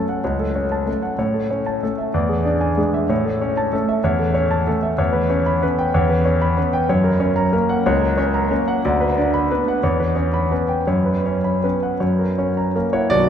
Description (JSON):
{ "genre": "classical, piano waltz", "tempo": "154-199 BPM", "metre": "3/4", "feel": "rubato", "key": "unclear", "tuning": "A4 = 440 Hz", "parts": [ { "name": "warm concert grand piano", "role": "solo", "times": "0.0-13.3 s", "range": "B0 to B5", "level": "-17 LUFS", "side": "equal", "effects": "none" } ], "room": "wet cathedral reverb, RT60 4.8 s", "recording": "in a vast, echoing space", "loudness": "-17 LUFS", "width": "side -8 dB against mid", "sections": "0.0-13.1 A section", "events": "none", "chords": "0.0 F#m; 1.2 A; 2.1 E7; 3.1 A; 5.0 C#m7b5/E; 6.9 F#; 8.8 Bm/D; 9.8 C#m7b5/E; 10.9 F#sus4; 12.0 F#", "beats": "| 0.24 0.55 0.87 | 1.19 1.50 1.82 | 2.14 2.45 2.78 | 3.10 3.41 3.73 | 4.04 4.35 4.67 | 4.98 5.30 5.63 | 5.94 6.25 6.57 | 6.89 7.20 7.53 | 7.86 8.18 8.51 | 8.84 9.17 9.50 | 9.83 10.16 10.51 | 10.87 11.25 11.64 | 12.01 12.38 12.75 | 13.10" }